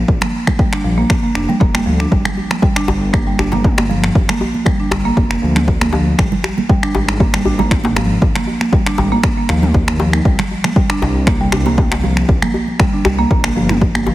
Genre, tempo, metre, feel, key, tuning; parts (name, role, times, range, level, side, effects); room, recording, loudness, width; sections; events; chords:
afro house; 118 BPM; 4/4; swing 54% on 16ths; G phrygian; A4 = 440 Hz
dark detuned saw bass; bass; 0.0-14.1 s; F1 to Eb2; -19 LUFS; equal; sidechain pumping
electronic kick drum; drums; 0.1-13.9 s; -15 LUFS; equal; overdrive, small room reverb
buzzing marimba with medium mallets; arpeggios; 0.2-14.1 s; F3 to D4; -18 LUFS; right 1 dB; sidechain pumping, dub echo
deep house drum kit; drums; 0.2-14.0 s; finger snaps, toms; -21 LUFS; left 1 dB; overdrive, small room reverb
congas; percussion; 0.2-14.1 s; -22 LUFS; right 3 dB
djembe; percussion; 2.1-14.1 s; -23 LUFS; left 2 dB
small room ambience; heavily compressed radio sound, multiband compression; -12 LUFS; side -16 dB against mid
0.0-14.1 A section
0.0 Gm7; 6.2 Absus2; 10.3 C5